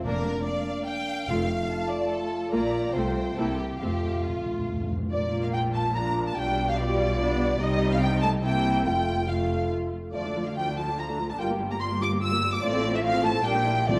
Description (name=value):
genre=quick classical-period movement for symphony orchestra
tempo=144 BPM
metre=3/4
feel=rubato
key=F major, Bb major from 5.1 s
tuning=A4 = 438 Hz
part: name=warm studio violin section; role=melody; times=0.0-14.0 s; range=D5 to E6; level=-35 LUFS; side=equal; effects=none
part: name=dark studio viola section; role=accompaniment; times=0.0-14.0 s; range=F3 to A4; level=-34 LUFS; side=equal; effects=none
part: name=clear French horn section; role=sustained chords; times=0.0-14.0 s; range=G3 to F4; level=-34 LUFS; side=equal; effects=none
part: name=clear symphonic cello section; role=bass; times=0.0-14.0 s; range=D2 to C3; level=-35 LUFS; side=equal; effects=none
part: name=rich studio double bass section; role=bass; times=0.0-14.0 s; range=F1 to D2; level=-34 LUFS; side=equal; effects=none
part: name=timpani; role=percussion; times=0.0-5.0, 13.9-14.0 s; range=F2 to C3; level=-36 LUFS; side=equal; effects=none
part: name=rich studio violin section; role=second line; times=0.1-14.0 s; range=F4 to E6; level=-36 LUFS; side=equal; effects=none
part: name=hollow concert flute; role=second line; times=5.1-14.0 s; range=D5 to E6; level=-34 LUFS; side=equal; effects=none
room=moderate scoring stage reverb, RT60 1.7 s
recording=none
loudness=-26 LUFS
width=mono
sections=0.0-5.1 A section; 5.1-14.0 B section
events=timpani fill 3.8-5.1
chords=0.0 Bb/F; 1.3 F; 2.5 Bb; 2.9 F/C; 3.4 C7; 3.8 F; 5.1 Bb; 6.4 G7/B; 7.6 Cm; 8.4 C7; 8.9 F; 10.1 Dm; 11.4 Gm7; 12.6 F/A; 13.5 Gm/Bb